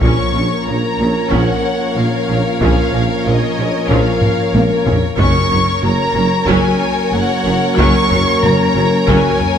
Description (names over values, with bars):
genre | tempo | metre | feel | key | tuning
cinematic, epic orchestral film score | 93 BPM | 4/4 | straight | unclear | A4 = 440 Hz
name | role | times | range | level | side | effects
dark symphonic violin section | melody | 0.0-9.6 s | D#5 to C#6 | -20 LUFS | left 2 dB | none
rich symphonic violin section | second line | 0.0-9.6 s | A#4 to C#5 | -21 LUFS | left 2 dB | none
rich symphonic viola section | accompaniment | 0.0-9.4 s | E#3 to C#4 | -21 LUFS | equal | none
dark French horn section | sustained chords | 0.0-9.6 s | C#4 to A#4 | -22 LUFS | left 4 dB | none
warm trombone section | sustained chords | 0.0-9.6 s | E#3 to A#3 | -21 LUFS | right 1 dB | none
mellow tuba | bass | 0.0-9.2 s | F#1 to A#1 | -22 LUFS | right 2 dB | none
rich symphonic cello section | bass | 0.0-9.2 s | F#2 to A#2 | -23 LUFS | right 1 dB | none
warm studio double bass section | bass | 0.0-9.2 s | F#1 to A#1 | -22 LUFS | right 2 dB | none
taiko ensemble | drums | 0.0-9.6 s | none | -19 LUFS | equal | none
timpani | percussion | 5.2-6.1 s | F#2 | -22 LUFS | equal | none
room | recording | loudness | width
wet scoring stage reverb, RT60 2.0 s | none | -12 LUFS | side -8 dB against mid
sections
0.0-9.6 A section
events
drum fill 4.2-5.2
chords
0.0 A#m; 5.2 F#